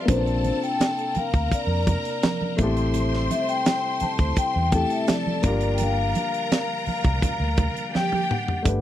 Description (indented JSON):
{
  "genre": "lush 1970s-style soul",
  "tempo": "84 BPM",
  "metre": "4/4",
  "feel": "straight",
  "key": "unclear",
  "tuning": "A4 = 441 Hz",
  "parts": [
    { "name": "vibraphone with soft mallets", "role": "melody", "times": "0.0-8.8 s", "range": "B4 to A5", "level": "-27 LUFS", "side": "left 4 dB", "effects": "none" },
    { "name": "warm symphonic string section", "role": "second line", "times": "0.0-8.6 s", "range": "G4 to C6", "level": "-30 LUFS", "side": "right 1 dB", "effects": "none" },
    { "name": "dark baby grand piano", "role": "accompaniment", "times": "0.0-8.8 s", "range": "A3 to B4", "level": "-30 LUFS", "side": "left 2 dB", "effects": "none" },
    { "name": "tonewheel organ", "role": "sustained chords", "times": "0.0-8.6 s", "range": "C3 to E4", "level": "-34 LUFS", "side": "right 1 dB", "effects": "slow rotary speaker, overdrive, chorus vibrato" },
    { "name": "vintage muted fingered electric bass", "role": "bass", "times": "0.1-8.8 s", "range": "G1 to F2", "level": "-25 LUFS", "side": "equal", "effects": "none" },
    { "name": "tight funk drum kit", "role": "drums", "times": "0.1-8.8 s", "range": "hi-hat, kick drum, snare drum, toms", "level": "-24 LUFS", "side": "right 1 dB", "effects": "none" },
    { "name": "congas", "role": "percussion", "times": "0.1-8.8 s", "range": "none", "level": "-30 LUFS", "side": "right 4 dB", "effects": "none" }
  ],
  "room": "light reverb",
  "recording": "dry, close 1970s-style studio recording",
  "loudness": "-21 LUFS",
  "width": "side -12 dB against mid",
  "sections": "0.0-8.7 A section",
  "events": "drum fill 7.9-8.7",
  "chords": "0.1 Bbmaj9; 2.6 Am7; 5.4 Gm7"
}